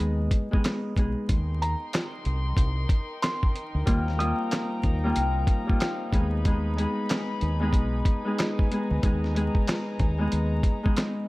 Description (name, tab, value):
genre	hip hop, boom-bap hip-hop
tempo	93 BPM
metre	4/4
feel	swing 61% on 16ths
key	Eb major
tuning	A4 = 437 Hz
part	Celtic harp	accompaniment	0.0-11.3 s	G3 to Ab4	-28 LUFS	left 1 dB	high-pass filter, low-pass filter
part	deep dub fingered electric bass	bass	0.0-10.6 s	Cb2 to Eb2	-27 LUFS	equal	none
part	dusty soul sampler-style drum kit	drums	0.3-11.2 s	handclaps, hi-hat, kick drum, snare drum	-25 LUFS	equal	none
part	warm studio string section	sustained chords	1.3-11.3 s	Eb4 to C6	-37 LUFS	left 1 dB	high-pass filter, low-pass filter
part	clear upright piano	melody	1.6-4.7 s	Bb5 to Eb6	-32 LUFS	right 1 dB	high-pass filter, low-pass filter, analog delay
room	light reverb, small room ambience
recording	vinyl crackle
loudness	-23 LUFS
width	side -20 dB against mid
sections	0.0-1.3 A section; 1.3-11.3 B section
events	none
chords	0.0 Abm; 1.3 Eb6; 6.1 Abm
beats	0.00 0.65 | 1.29 1.94 2.58 3.23 | 3.87 4.52 5.16 5.81 | 6.45 7.10 7.74 8.39 | 9.03 9.68 10.32 10.97